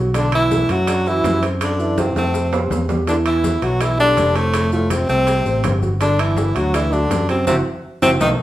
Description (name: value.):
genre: Afro-Cuban jazz.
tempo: 164 BPM.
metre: 4/4.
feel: straight.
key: unclear.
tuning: A4 = 440 Hz.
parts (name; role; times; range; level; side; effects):
warm baby grand piano; accompaniment; 0.0-8.3 s; D3 to E5; -25 LUFS; right 2 dB; none.
fingered electric bass; bass; 0.0-8.3 s; F1 to F#2; -21 LUFS; equal; none.
bongos; percussion; 0.1-8.3 s; none; -30 LUFS; left 4 dB; none.
congas; percussion; 0.1-8.3 s; none; -30 LUFS; left 2 dB; none.
maracas; percussion; 0.1-8.3 s; none; -38 LUFS; left 5 dB; none.
timbales; percussion; 0.1-8.3 s; none; -27 LUFS; right 4 dB; none.
clear tenor saxophone; melody; 0.2-8.3 s; A3 to F#4; -19 LUFS; equal; none.
brilliant trombone; second line; 0.2-8.3 s; A2 to F#3; -26 LUFS; left 2 dB; none.
room: moderate large studio reverb, RT60 0.9 s.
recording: band playing live in one room.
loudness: -15 LUFS.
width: side -14 dB against mid.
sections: 0.0-8.4 A section.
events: drum fill 2.0-3.1, 7.5-8.4; band accent 7.5-8.4.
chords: 0.1 Bm7; 1.6 F#m7b5; 2.3 Fadd9; 3.1 Em7; 4.5 Fadd9; 6.0 G5; 7.5 C.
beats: | 0.15 0.51 0.88 1.25 | 1.61 1.98 2.34 2.71 | 3.08 3.44 3.81 4.18 | 4.54 4.91 5.28 5.64 | 6.01 6.38 6.74 7.11 | 7.48 7.84 8.21.